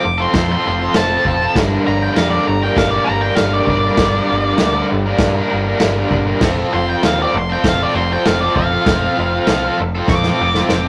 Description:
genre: garage rock duo or trio.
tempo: 98 BPM.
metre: 4/4.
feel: straight.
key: unclear.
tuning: A4 = 439 Hz.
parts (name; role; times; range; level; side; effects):
octave-fuzz lead guitar; melody; 0.0-10.9 s; D5 to D6; -22 LUFS; equal; distortion, analog delay.
raw garage guitar; riff; 0.0-10.9 s; G2 to Bb4; -20 LUFS; equal; overdrive, tremolo.
growling picked electric bass; bass; 0.1-10.9 s; F1 to G2; -23 LUFS; equal; overdrive.
vintage drum kit; drums; 0.3-10.8 s; crash cymbal, kick drum, snare drum; -22 LUFS; equal; none.
room: moderate studio reverb, RT60 0.5 s.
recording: rough rehearsal-room recording, tube saturation.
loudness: -16 LUFS.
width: mono.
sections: 0.0-10.9 A section.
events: lead electric guitar solo 0.0-10.9; drum fill 10.1-10.9.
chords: 0.0 F; 1.6 Gm; 6.4 F.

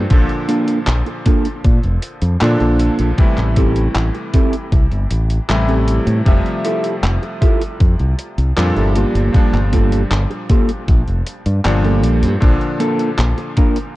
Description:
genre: vaporwave.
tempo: 78 BPM.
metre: 4/4.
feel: straight.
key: unclear.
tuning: A4 = 440 Hz.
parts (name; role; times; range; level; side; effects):
bright electric grand piano; accompaniment; 0.0-14.0 s; Bb2 to E5; -21 LUFS; left 1 dB; lush chorus, tape echo.
mellow electric guitar; riff; 0.0-13.8 s; Bb3 to Bb4; -21 LUFS; right 2 dB; wide subtle chorus, vintage 12-bit sampler grit, tape echo.
modern bright fingered electric bass; bass; 0.0-13.3 s; F1 to Bb2; -16 LUFS; equal; tube saturation.
detuned 8-bit digital drum machine; drums; 0.1-13.9 s; handclaps, hi-hat; -26 LUFS; equal; none.
electronic kick drum; drums; 0.1-13.7 s; none; -14 LUFS; equal; none.
room: digital ambience.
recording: dark, warm production, nothing above 10.5 kHz.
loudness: -13 LUFS.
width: side -17 dB against mid.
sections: 0.0-14.0 A section.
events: none.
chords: 0.1 Bbmaj7; 3.2 Am7; 6.3 Fmaj9; 9.0 Gm9; 12.4 Bbmaj7.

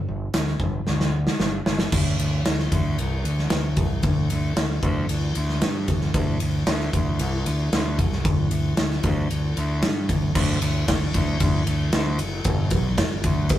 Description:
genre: classic rock.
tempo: 114 BPM.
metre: 4/4.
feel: straight.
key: unclear.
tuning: A4 = 441 Hz.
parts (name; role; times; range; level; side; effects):
growling fingered electric bass; bass; 0.1-13.6 s; F#1 to G2; -24 LUFS; equal; overdrive.
big rock drum kit; drums; 0.3-13.6 s; crash cymbal, hi-hat, kick drum, ride cymbal, snare drum; -23 LUFS; equal; none.
room: light reverb.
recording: rough rehearsal-room recording.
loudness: -20 LUFS.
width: side -12 dB against mid.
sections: 0.0-1.9 A section; 1.9-10.4 B section; 10.4-13.6 C section.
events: drum fill 0.9-1.9.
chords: none.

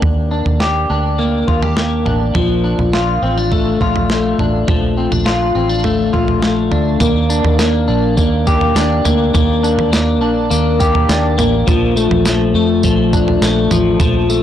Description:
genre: dream pop.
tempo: 103 BPM.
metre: 4/4.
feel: straight.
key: Eb lydian.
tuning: A4 = 440 Hz.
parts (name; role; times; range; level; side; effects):
clean electric guitar; arpeggios; 0.0-14.4 s; F3 to G4; -14 LUFS; left 2 dB; analog chorus, slapback echo.
vintage muted fingered electric bass; bass; 0.0-14.4 s; A1 to F2; -18 LUFS; right 1 dB; none.
crisp 8-bit digital drum machine; drums; 0.0-14.4 s; kick drum, snare drum, tambourine, toms; -17 LUFS; right 2 dB; none.
room: light reverb.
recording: blown-out, overdriven recording, overdrive.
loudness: -12 LUFS.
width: side -10 dB against mid.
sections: 0.0-7.0 A section; 7.0-14.4 B section.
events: none.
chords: 0.0 Ebmaj7; 2.4 Bbmaj7; 7.0 Ebmaj7; 11.7 Bbmaj7.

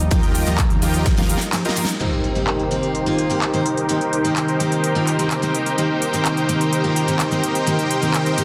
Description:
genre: EDM, festival progressive house.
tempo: 127 BPM.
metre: 4/4.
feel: straight.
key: C minor.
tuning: A4 = 441 Hz.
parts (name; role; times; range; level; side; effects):
lush unison pad; sustained chords; 0.0-8.4 s; C3 to Eb4; -30 LUFS; equal; chorus, sidechain pumping.
fat analog bass; bass; 0.0-1.3 s; Eb2; -25 LUFS; equal; sidechain pumping.
big-room dance drum kit; drums; 0.0-8.4 s; crash cymbal, handclaps, hi-hat, shaker, snare drum; -28 LUFS; equal; low-pass filter on hats, low-pass filter on perc, low-pass filter on snare, low-pass filter on cymbals.
picked steel-string acoustic guitar; accompaniment; 0.1-8.4 s; Eb3 to C5; -26 LUFS; equal; vintage 12-bit sampler grit, sidechain pumping, digital delay.
dense compressed supersaw; riff; 0.1-8.4 s; Eb4 to Bb5; -24 LUFS; equal; sidechain pumping, low-pass filter, digital delay.
electronic kick drum; drums; 0.1-1.2 s; none; -22 LUFS; equal; none.
impact; sound effects; 2.0-3.9 s; none; -30 LUFS; equal; none.
room: wet scoring stage reverb, RT60 1.4 s, digital ambience.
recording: dense, heavily limited modern master.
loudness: -19 LUFS.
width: mono.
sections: 0.0-2.0 A section; 2.0-8.4 B section.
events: drop 0.0-2.0; drum fill 1.1-2.0; band accent 1.8; impact 2.0-3.9; filter sweep on supersaw synth 2.0-8.4.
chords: 0.0 Ebadd9; 2.0 Cm7.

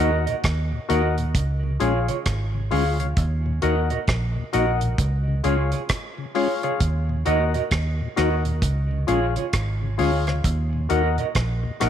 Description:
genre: roots reggae.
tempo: 66 BPM.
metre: 4/4.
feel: swing 62% on 16ths.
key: Eb minor.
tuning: A4 = 440 Hz.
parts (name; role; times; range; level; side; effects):
mellow electric guitar; accompaniment; 0.0-11.9 s; F4 to Eb5; -29 LUFS; right 10 dB; wide subtle chorus, tape echo.
mellow tonewheel organ; accompaniment; 0.0-11.9 s; Eb2 to Gb4; -30 LUFS; left 8 dB; slow rotary speaker.
percussive organ stab; stabs; 0.0-11.9 s; F4 to Gb5; -27 LUFS; left 9 dB; chorus.
vintage muted fingered electric bass; bass; 0.0-11.9 s; Ab1 to Eb2; -23 LUFS; right 1 dB; none.
deep reggae drum kit; drums; 0.3-11.9 s; hi-hat, kick drum, rim click; -26 LUFS; right 1 dB; none.
room: light reverb, small room ambience.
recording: 1960s-style stereo with parts hard left and right.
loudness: -20 LUFS.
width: side -9 dB against mid.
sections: 0.0-11.9 A section.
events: none.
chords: 0.0 Ebm; 1.3 Db; 3.2 Ebm; 5.0 Db; 6.8 Ebm; 8.6 Db; 10.4 Ebm.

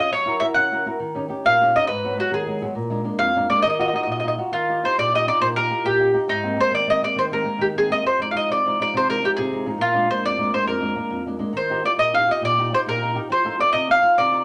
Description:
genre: italian folk.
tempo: 137 BPM (dotted quarters).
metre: 6/8.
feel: rubato.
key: Eb minor, Eb major from 4.5 s.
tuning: A4 = 442 Hz.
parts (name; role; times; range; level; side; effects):
mandolin; melody; 0.0-14.4 s; Eb4 to Gb5; -21 LUFS; equal; none.
flamenco guitar; accompaniment; 0.0-14.4 s; F2 to Bb4; -29 LUFS; equal; none.
room: wet small room reverb, RT60 0.5 s.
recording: none.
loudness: -21 LUFS.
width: mono.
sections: 0.0-4.5 A section; 4.5-14.4 B section.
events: none.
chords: 0.1 Gb7; 1.0 Eb7; 1.9 Abm7; 2.8 Bb7; 3.6 Ebmadd9; 4.5 Ebadd9; 6.3 Abadd9; 8.0 Fm7; 9.8 Bb7; 11.5 Ebadd9; 13.3 F7.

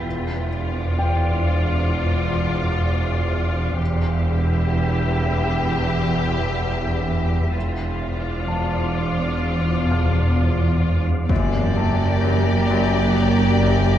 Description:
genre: cinematic, suspense film score.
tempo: 64 BPM.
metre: 4/4.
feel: straight.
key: unclear.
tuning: A4 = 442 Hz.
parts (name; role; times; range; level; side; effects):
wind-like tuned noise texture; sustained chords; 0.0-14.0 s; Bb4 to G5; -28 LUFS; left 1 dB; built-in reverb.
swarming drone; drone; 0.0-14.0 s; F#1 to E2; -25 LUFS; equal; built-in reverb.
dark grand piano; texture; 0.0-14.0 s; A4 to F6; -34 LUFS; left 2 dB; none.
rich studio violin section; melody; 0.1-14.0 s; F4 to D5; -29 LUFS; left 5 dB; none.
rich studio cello section; bass; 0.1-14.0 s; E2 to F#2; -24 LUFS; right 2 dB; none.
rich symphonic double bass section; bass; 0.1-14.0 s; E1 to F#1; -24 LUFS; right 1 dB; none.
warm symphonic violin section; second line; 11.3-14.0 s; G4; -26 LUFS; left 6 dB; none.
rich symphonic viola section; accompaniment; 11.3-14.0 s; Bb3; -23 LUFS; right 2 dB; none.
Celtic harp; riff; 11.3-14.0 s; F#2 to F#3; -26 LUFS; left 7 dB; none.
impact; sound effects; 11.3-14.0 s; none; -28 LUFS; equal; none.
room: moderate scoring stage reverb, RT60 1.6 s.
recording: dark, warm production.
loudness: -18 LUFS.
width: side -11 dB against mid.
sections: 0.0-11.3 A section; 11.3-14.0 B section.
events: impact 11.3-14.0.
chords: 0.1 Dm7/E; 3.8 Em; 7.6 Dm7/E; 11.3 Gm/F#.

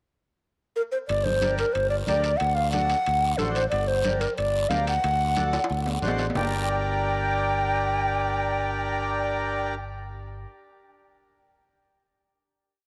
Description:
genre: latin, cumbia.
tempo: 182 BPM.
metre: 4/4.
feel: straight.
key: G harmonic minor.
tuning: A4 = 440 Hz.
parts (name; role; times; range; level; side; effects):
breathy bright long shakuhachi; melody; 0.8-9.7 s; A4 to G5; -28 LUFS; equal; none.
fingered electric bass; bass; 1.1-10.4 s; G1 to D2; -32 LUFS; equal; none.
guiro; percussion; 1.1-6.4 s; none; -41 LUFS; equal; none.
timbales; percussion; 1.1-6.4 s; none; -38 LUFS; equal; none.
congas; percussion; 1.3-6.4 s; none; -37 LUFS; equal; none.
accordion; accompaniment; 1.4-9.7 s; D4 to C5; -32 LUFS; equal; none.
room: moderate plate reverb, RT60 3.7 s.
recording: none.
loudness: -25 LUFS.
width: mono.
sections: 0.0-1.1 pickup bar; 1.1-6.4 A section; 6.4-9.0 final chord.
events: drum fill 5.5-6.4.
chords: 0.0 N.C.; 1.1 Gm; 2.4 D7; 3.7 Gm; 5.0 D7; 6.4 Gm.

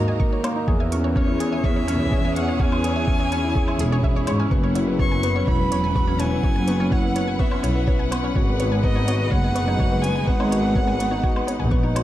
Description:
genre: piano and strings electronica.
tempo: 125 BPM.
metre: 4/4.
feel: straight.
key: C# dorian.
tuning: A4 = 440 Hz.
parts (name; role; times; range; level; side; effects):
rich violin; melody; 0.0-11.7 s; C#5 to C#6; -29 LUFS; right 1 dB; tape echo.
clear chamber string section; sustained chords; 0.0-12.0 s; D#3 to F#5; -29 LUFS; right 1 dB; sidechain pumping.
wide unison pluck; arpeggios; 0.0-12.0 s; G#4 to C#6; -35 LUFS; left 1 dB; sidechain pumping, tape echo.
felt-muted upright piano; riff; 0.0-12.0 s; A#3 to C#6; -25 LUFS; left 1 dB; tape echo.
clear symphonic double bass section; bass; 0.0-11.9 s; E1 to G#2; -24 LUFS; equal; sidechain pumping.
electronic kick drum; drums; 0.2-11.8 s; none; -22 LUFS; equal; none.
electronic hi-hat and woodblock; drums; 0.4-12.0 s; none; -34 LUFS; right 1 dB; overdrive.
room: light reverb, small room ambience.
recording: dark, warm production.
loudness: -18 LUFS.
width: side -13 dB against mid.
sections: 0.0-12.0 A section.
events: none.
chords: 0.0 D#m; 0.7 C#m/E; 4.5 F#7sus4; 8.4 G#m7.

